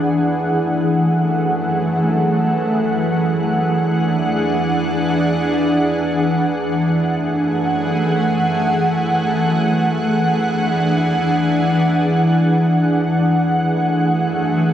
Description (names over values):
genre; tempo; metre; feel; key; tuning
hip hop; free time; none; none; F# minor; A4 = 440 Hz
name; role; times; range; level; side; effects
ethereal airy pad; solo; 0.0-14.7 s; E2 to F#5; -15 LUFS; equal; ensemble chorus, built-in reverb, tape echo
room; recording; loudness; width
wet concert hall reverb, RT60 2.4 s; recorded on a phone in the room, club ambience, compression; -15 LUFS; side -10 dB against mid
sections
0.0-6.8 A section; 6.8-14.7 B section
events
none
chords
0.3 F#m7; 3.6 E7; 6.8 F#m7; 10.0 E7; 13.3 F#m7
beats
free time